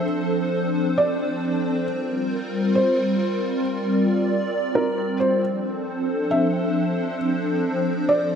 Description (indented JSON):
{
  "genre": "hip hop",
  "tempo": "135 BPM",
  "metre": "4/4",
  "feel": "half-time",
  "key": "D minor",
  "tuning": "A4 = 441 Hz",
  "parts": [
    { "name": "felt-muted upright piano", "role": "melody", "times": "0.0-8.4 s", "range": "Bb4 to E5", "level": "-24 LUFS", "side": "equal", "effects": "tape echo" },
    { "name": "hollow soft pad", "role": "sustained chords", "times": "0.0-8.4 s", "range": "F3 to D5", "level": "-21 LUFS", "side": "equal", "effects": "ensemble chorus" }
  ],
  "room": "moderate lush hall reverb, RT60 3.1 s",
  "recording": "none",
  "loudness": "-20 LUFS",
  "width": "side -7 dB against mid",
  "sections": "0.0-8.4 A section",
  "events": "none",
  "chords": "0.0 Dm7; 1.9 C7sus4; 5.4 Dm7"
}